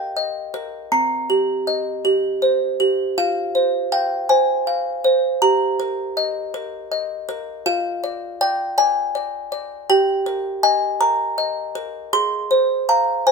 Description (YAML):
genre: classical, lullaby for music box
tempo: 54 BPM (dotted quarters)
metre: 6/8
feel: straight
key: Eb major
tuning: A4 = 440 Hz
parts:
  - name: music box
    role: solo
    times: 0.0-13.3 s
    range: C4 to C6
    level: -18 LUFS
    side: equal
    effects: none
room: moderate studio reverb, RT60 0.9 s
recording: band playing live in one room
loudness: -18 LUFS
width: side -4 dB against mid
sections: 0.0-13.3 A section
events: none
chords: 0.0 Eb/G; 0.9 Cm; 3.2 Fm; 5.4 Eb/G; 7.7 Ddim/F; 9.9 Eb/G; 12.1 Fm/Ab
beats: | 0.92 2.05 | 3.17 4.30 | 5.42 6.54 | 7.66 8.78 | 9.89 11.01 | 12.13 13.27